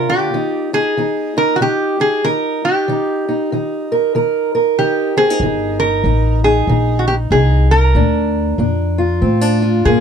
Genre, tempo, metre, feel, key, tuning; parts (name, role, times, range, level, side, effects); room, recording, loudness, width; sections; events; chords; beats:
acoustic country blues, solo or duo; 95 BPM; 4/4; swing 62% on 8ths; A4 = 440 Hz
lap resonator guitar; melody; 0.0-10.0 s; Gb4 to Bb4; -17 LUFS; right 1 dB
fingerpicked steel-string acoustic guitar; accompaniment; 0.0-10.0 s; Bb2 to Bb4; -18 LUFS; equal
upright bass; bass; 5.4-10.0 s; G1 to A2; -15 LUFS; equal
light reverb; dark, warm production; -13 LUFS; side -7 dB against mid
0.0-10.0 A section
0.3 Eb; 7.9 Bb
| 0.34 0.97 1.61 2.24 | 2.87 3.50 4.14 4.77 | 5.40 6.04 6.67 7.31 | 7.94 8.58 9.21 9.85